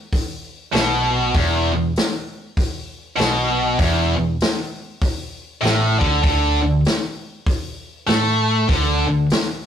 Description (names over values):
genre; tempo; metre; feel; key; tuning
blues rock power trio and southern rock; 98 BPM; 4/4; swing 62% on 8ths; unclear; A4 = 440 Hz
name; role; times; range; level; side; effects
vintage drum kit; drums; 0.1-9.5 s; hi-hat, kick drum, snare drum; -22 LUFS; equal; none
tight distorted guitar; riff; 0.7-9.3 s; E2 to A3; -18 LUFS; equal; distortion
picked electric bass; bass; 0.7-9.3 s; E1 to A2; -22 LUFS; equal; none
room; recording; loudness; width
wet studio reverb, RT60 0.6 s; rough rehearsal-room recording, warm saturation; -17 LUFS; side -9 dB against mid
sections
0.0-9.7 A section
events
none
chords
0.0 E5; 6.2 D5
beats
0.12 0.73 | 1.34 1.95 2.57 3.18 | 3.79 4.40 5.01 5.62 | 6.24 6.85 7.46 8.08 | 8.69 9.30